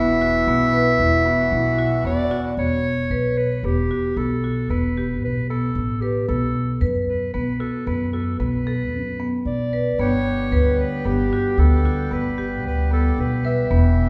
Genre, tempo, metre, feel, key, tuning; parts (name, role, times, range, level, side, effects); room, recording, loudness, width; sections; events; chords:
contemporary instrumental, chamber music in an uneven meter; 113 BPM; 7/4; straight; E dorian; A4 = 438 Hz
clear clarinet; melody; 0.0-14.1 s; G4 to E5; -27 LUFS; equal
vibraphone with soft mallets; second line; 0.0-2.6 s; E4 to F#4; -29 LUFS; equal
hand-pumped harmonium; sustained chords; 0.0-2.5, 10.0-14.1 s; E3 to G4; -32 LUFS; equal
marimba with hard mallets; arpeggios; 0.0-14.0 s; B3 to B4; -26 LUFS; equal
upright bass; bass; 0.0-14.1 s; E1 to F#2; -25 LUFS; equal
wet recital hall reverb, RT60 1.4 s; heard from further back in the room; -21 LUFS; mono
0.0-2.6 A section; 2.6-14.1 B section
0.0 Esus2; 2.6 Em; 6.3 B7(no3); 10.0 G